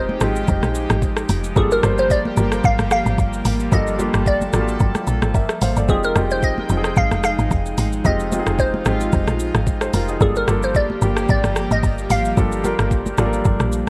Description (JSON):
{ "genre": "amapiano", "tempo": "111 BPM", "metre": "4/4", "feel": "swing 55% on 16ths", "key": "unclear", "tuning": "A4 = 440 Hz", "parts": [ { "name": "glassy wavetable pluck", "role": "melody", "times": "0.0-13.7 s", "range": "Ab4 to F5", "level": "-25 LUFS", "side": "equal", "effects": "chorus, delay" }, { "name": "warm grand piano", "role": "accompaniment", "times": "0.0-13.9 s", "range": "G3 to F5", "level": "-27 LUFS", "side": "equal", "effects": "none" }, { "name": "airy breathy pad", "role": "sustained chords", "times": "0.0-13.9 s", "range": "F3 to G5", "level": "-29 LUFS", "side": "equal", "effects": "chorus, sidechain pumping" }, { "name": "woody log drum bass", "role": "bass", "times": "0.0-13.8 s", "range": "F1 to Bb1", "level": "-24 LUFS", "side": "equal", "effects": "none" }, { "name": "congas", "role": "percussion", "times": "0.1-13.7 s", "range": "none", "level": "-30 LUFS", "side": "equal", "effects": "none" }, { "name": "smooth R&B drum kit", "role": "drums", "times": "0.2-13.9 s", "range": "hi-hat, kick drum, rim click, shaker", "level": "-24 LUFS", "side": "equal", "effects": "none" } ], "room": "little or no reverb", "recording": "worn, warbling old tape, cassette tape, warbly pitch drift", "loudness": "-19 LUFS", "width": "mono", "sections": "0.0-13.9 A section", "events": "none", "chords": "0.0 Fm9; 1.6 Gm9; 5.9 Fm9; 10.2 Gm9", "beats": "0.48 1.02 | 1.56 2.10 2.64 3.18 | 3.72 4.26 4.80 5.34 | 5.88 6.43 6.97 7.51 | 8.05 8.59 9.13 9.67 | 10.21 10.75 11.29 11.83 | 12.37 12.91 13.45" }